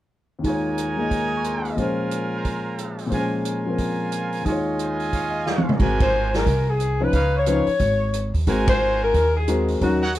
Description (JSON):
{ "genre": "jazz, big band swing", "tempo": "179 BPM", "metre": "4/4", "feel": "swing 62% on 8ths", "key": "Ab mixolydian", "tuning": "A4 = 443 Hz", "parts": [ { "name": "warm concert grand piano", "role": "accompaniment", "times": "0.4-10.0 s", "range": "Eb2 to Eb6", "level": "-24 LUFS", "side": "left 2 dB", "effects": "none" }, { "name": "brilliant trumpet section", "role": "stabs", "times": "0.4-10.1 s", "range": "Eb4 to Eb6", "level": "-28 LUFS", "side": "right 3 dB", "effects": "none" }, { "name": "swinging big-band drum kit", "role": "drums", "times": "0.4-10.2 s", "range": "crash cymbal, hi-hat, kick drum, ride cymbal, snare drum, toms", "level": "-25 LUFS", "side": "right 1 dB", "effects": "none" }, { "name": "upright bass", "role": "bass", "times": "5.8-10.2 s", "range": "Ab1 to Eb2", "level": "-23 LUFS", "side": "right 1 dB", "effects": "none" }, { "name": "clear saxophone section", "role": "melody", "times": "6.0-10.2 s", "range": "Gb4 to Db5", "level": "-22 LUFS", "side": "left 2 dB", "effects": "none" } ], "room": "little or no reverb", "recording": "none", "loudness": "-20 LUFS", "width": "side -14 dB against mid", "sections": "0.4-5.8 A section; 5.8-10.2 B section", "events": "drum fill 5.5-5.8; band accent 6.0, 8.6", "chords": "0.4 Eb7sus4; 1.8 Bbm7; 4.5 Eb9sus4; 5.8 Ab9; 7.1 Db9; 8.5 Ab9", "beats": "| 0.44 0.78 1.11 1.45 | 1.78 2.12 2.45 2.79 | 3.12 3.46 3.79 4.12 | 4.46 4.79 5.13 5.46 | 5.80 6.13 6.47 6.80 | 7.13 7.47 7.80 8.14 | 8.47 8.81 9.14 9.48 | 9.81 10.15" }